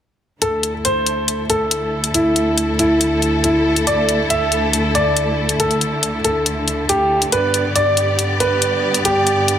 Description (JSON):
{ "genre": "heavy wobble dubstep", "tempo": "139 BPM", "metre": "4/4", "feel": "half-time", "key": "unclear", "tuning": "A4 = 440 Hz", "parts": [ { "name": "dark concert grand piano", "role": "melody", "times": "0.4-9.6 s", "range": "E4 to E5", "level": "-17 LUFS", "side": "right 1 dB", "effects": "digital delay" }, { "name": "warm symphonic string section", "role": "sustained chords", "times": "0.4-9.6 s", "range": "D2 to D5", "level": "-20 LUFS", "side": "equal", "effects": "none" }, { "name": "electronic hi-hat", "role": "drums", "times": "0.4-9.6 s", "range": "none", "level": "-18 LUFS", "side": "left 3 dB", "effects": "overdrive" } ], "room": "moderate digital room reverb, RT60 0.9 s", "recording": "none", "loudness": "-15 LUFS", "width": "side -9 dB against mid", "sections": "0.4-9.6 A section", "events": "none", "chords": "0.4 Dsus2; 7.3 G" }